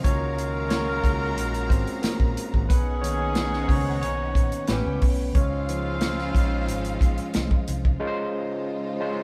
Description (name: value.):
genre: lush 1970s-style soul.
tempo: 90 BPM.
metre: 4/4.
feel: straight.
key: Db major.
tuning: A4 = 440 Hz.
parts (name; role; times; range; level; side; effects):
rich studio violin section; second line; 0.0-8.0 s; Db4 to Bb5; -40 LUFS; equal; none.
overdriven tine electric piano; accompaniment; 0.0-9.2 s; Eb3 to Db5; -32 LUFS; equal; none.
warm studio string section; sustained chords; 0.0-9.2 s; Cb3 to F5; -38 LUFS; equal; none.
mellow horn section; stabs; 0.0-7.6 s; Db3 to Bb4; -34 LUFS; equal; none.
hollow-body short-scale fingered electric bass; bass; 0.0-8.0 s; Ab1 to Db2; -31 LUFS; equal; none.
warm soul drum kit; drums; 0.0-8.0 s; hi-hat, kick drum, snare drum; -26 LUFS; equal; none.
room: moderate stone room reverb, RT60 1.1 s.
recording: band playing live in one room.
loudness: -25 LUFS.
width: mono.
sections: 0.0-8.0 A section; 8.0-9.2 A section.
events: tine electric piano solo 0.0-8.0.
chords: 0.0 Gbmaj7/Db; 2.7 Cbmaj9; 4.7 A9; 5.4 Dbmaj7; 8.0 Dbmaj9.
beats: | 0.04 0.70 1.37 2.03 | 2.70 3.36 4.03 4.69 | 5.35 6.02 6.68 7.35 | 8.01 8.68.